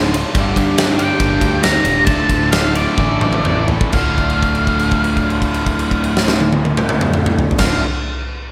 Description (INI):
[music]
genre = classic rock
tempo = 121-143 BPM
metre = 4/4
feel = straight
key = D minor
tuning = A4 = 439 Hz
[part]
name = picked twelve-string acoustic guitar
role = accompaniment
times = 0.0-7.8 s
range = G2 to A4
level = -29 LUFS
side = equal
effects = slapback echo
[part]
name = crunchy overdriven guitar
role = riff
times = 0.0-7.8 s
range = D2 to A4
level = -26 LUFS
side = equal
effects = slapback echo
[part]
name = overdriven electric guitar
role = riff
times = 0.0-7.8 s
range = D2 to A3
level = -26 LUFS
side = equal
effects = none
[part]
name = raw garage guitar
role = riff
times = 0.0-7.8 s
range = D2 to A3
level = -27 LUFS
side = equal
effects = none
[part]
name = picked electric bass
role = bass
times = 0.0-7.8 s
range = D1 to G2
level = -24 LUFS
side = equal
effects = none
[part]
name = huge arena drum kit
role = drums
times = 0.1-7.7 s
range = crash cymbal, kick drum, ride cymbal, snare drum, toms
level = -20 LUFS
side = equal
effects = none
[part]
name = octave-fuzz lead guitar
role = melody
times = 1.0-7.8 s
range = D5 to Bb5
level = -23 LUFS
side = equal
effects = distortion, slapback echo
[sound]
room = moderate lush hall reverb, RT60 1.7 s, studio reverb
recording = big arena sound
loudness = -16 LUFS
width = mono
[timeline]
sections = 0.0-3.9 A section; 3.9-7.9 B section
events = slowing down 0.4-3.9; drum fill 3.0-3.9; held note 3.9-7.6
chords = 0.4 Gm; 2.1 Dm; 3.0 Asus4; 3.9 Dm